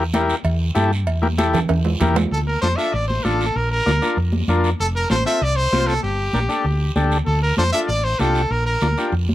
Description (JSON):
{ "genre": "latin, cumbia", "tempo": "194 BPM", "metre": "4/4", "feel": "straight", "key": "D minor", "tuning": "A4 = 440 Hz", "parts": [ { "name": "overdriven combo organ", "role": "accompaniment", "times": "0.0-9.1 s", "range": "C4 to C5", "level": "-23 LUFS", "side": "left 2 dB", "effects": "none" }, { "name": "hollow-body short-scale fingered electric bass", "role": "bass", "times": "0.0-9.3 s", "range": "F1 to G2", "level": "-20 LUFS", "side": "equal", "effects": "none" }, { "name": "congas", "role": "percussion", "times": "0.1-9.3 s", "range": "none", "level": "-26 LUFS", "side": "equal", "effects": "none" }, { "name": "cowbell and timbales", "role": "percussion", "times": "0.1-2.2 s", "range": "none", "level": "-25 LUFS", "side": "right 4 dB", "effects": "none" }, { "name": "guiro", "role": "percussion", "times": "0.1-9.3 s", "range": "none", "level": "-33 LUFS", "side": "right 5 dB", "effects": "none" }, { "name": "brilliant trumpet", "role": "melody", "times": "2.3-9.1 s", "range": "G4 to E5", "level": "-22 LUFS", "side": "equal", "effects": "none" } ], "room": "little or no reverb", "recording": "close, detailed microphones", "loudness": "-17 LUFS", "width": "side -14 dB against mid", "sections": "0.0-2.3 A section; 2.3-9.3 B section", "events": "drum fill 1.5-2.3", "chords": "0.0 Edim; 2.3 Dm; 3.5 Bb; 4.8 F; 6.0 Gm; 7.3 Dm7; 8.5 Bb" }